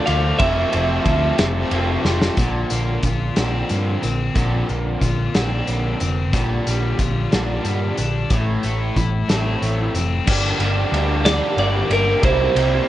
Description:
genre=indie rock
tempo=61 BPM (dotted quarters)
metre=6/8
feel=straight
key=unclear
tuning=A4 = 440 Hz
part: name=twelve-string electric guitar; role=melody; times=0.0-1.7, 11.3-12.9 s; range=Bb4 to F5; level=-20 LUFS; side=right 2 dB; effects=none
part: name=glockenspiel with soft plastic mallets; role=second line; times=0.0-2.4 s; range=A5 to D6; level=-35 LUFS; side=right 2 dB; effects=none
part: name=lush unison pad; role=sustained chords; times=0.0-2.4, 10.3-12.9 s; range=F4 to Bb5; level=-35 LUFS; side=equal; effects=none
part: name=biting overdriven guitar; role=riff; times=0.0-12.9 s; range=F2 to G4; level=-25 LUFS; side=left 6 dB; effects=none
part: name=cranked stack guitar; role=riff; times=0.0-12.9 s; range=F2 to E4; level=-26 LUFS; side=right 5 dB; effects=overdrive, ensemble chorus, tape echo
part: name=picked electric bass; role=bass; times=0.1-12.8 s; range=F1 to G2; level=-22 LUFS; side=equal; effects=none
part: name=loose indie drum kit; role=drums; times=0.1-12.7 s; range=crash cymbal, hi-hat, kick drum, ride cymbal, snare drum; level=-22 LUFS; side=equal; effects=none
room=light reverb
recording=worn, warbling old tape, cassette tape, warbly pitch drift, nothing above 11.0 kHz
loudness=-17 LUFS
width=side -14 dB against mid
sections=0.0-2.4 A section; 2.4-10.3 B section; 10.3-12.9 A section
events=drum fill 2.1-2.4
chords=0.4 Fmaj7; 2.4 Bbadd9; 6.3 Gm7/Bb; 8.3 Am; 10.3 Gm7; 12.2 C7

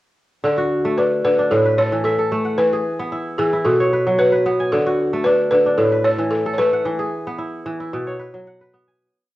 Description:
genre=west african traditional, West African string and xylophone music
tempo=112 BPM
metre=4/4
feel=straight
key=D lydian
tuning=A4 = 440 Hz
part: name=kora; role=arpeggios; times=0.4-9.4 s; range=A2 to G#5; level=-19 LUFS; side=equal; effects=cassette tape
part: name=balafon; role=melody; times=0.5-8.2 s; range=G#4 to C#5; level=-19 LUFS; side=left 1 dB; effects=none
room=wet booth ambience, RT60 0.2 s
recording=home recording on cassette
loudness=-16 LUFS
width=side -16 dB against mid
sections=0.4-9.0 A section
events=fade-out 6.9-9.0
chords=0.4 D; 1.5 A5; 2.6 E; 3.6 B5; 4.7 D; 5.8 A5; 6.9 E; 7.9 B5

